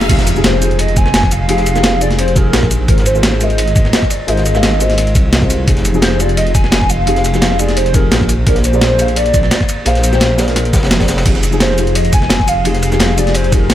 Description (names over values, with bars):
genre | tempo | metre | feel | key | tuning
liquid drum and bass | 172 BPM | 4/4 | swing 53% on 16ths | unclear | A4 = 442 Hz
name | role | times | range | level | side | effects
hollow clarinet-like synth lead | melody | 0.0-13.7 s | Bb4 to Ab5 | -18 LUFS | equal | phaser, ensemble chorus, dub echo
felt-muted upright piano | accompaniment | 0.0-13.7 s | F3 to G5 | -19 LUFS | left 2 dB | ping-pong delay
dark detuned saw bass | bass | 0.0-13.7 s | F1 to C2 | -15 LUFS | equal | tube saturation
breakbeat sampler-style drum kit | drums | 0.0-13.7 s | crash cymbal, hi-hat, ride cymbal, shaker, snare drum | -17 LUFS | equal | overdrive
riser and impact | sound effects | 0.0-1.5 s | none | -22 LUFS | equal | none
crunchy breakbeat drum kit | drums | 0.1-13.7 s | ride cymbal, snare drum | -23 LUFS | equal | high-pass filter on cymbals, high-pass filter on snare, high-pass filter on room
electronic kick drum | drums | 0.1-13.6 s | none | -14 LUFS | equal | overdrive
room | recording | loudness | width
small room ambience | none | -10 LUFS | side -12 dB against mid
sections
0.1-13.7 A section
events
drop 0.1-13.7; impact 0.1-1.5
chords
0.1 Fm9; 2.9 Ab69; 5.7 Fm9; 8.3 Bb9; 11.3 Fm9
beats
| 0.09 0.44 0.79 1.14 | 1.49 1.84 2.19 2.54 | 2.88 3.23 3.58 3.93 | 4.28 4.63 4.98 5.33 | 5.68 6.02 6.37 6.72 | 7.07 7.42 7.77 8.12 | 8.47 8.81 9.16 9.51 | 9.86 10.21 10.56 10.91 | 11.26 11.61 11.96 12.30 | 12.65 13.00 13.35 13.70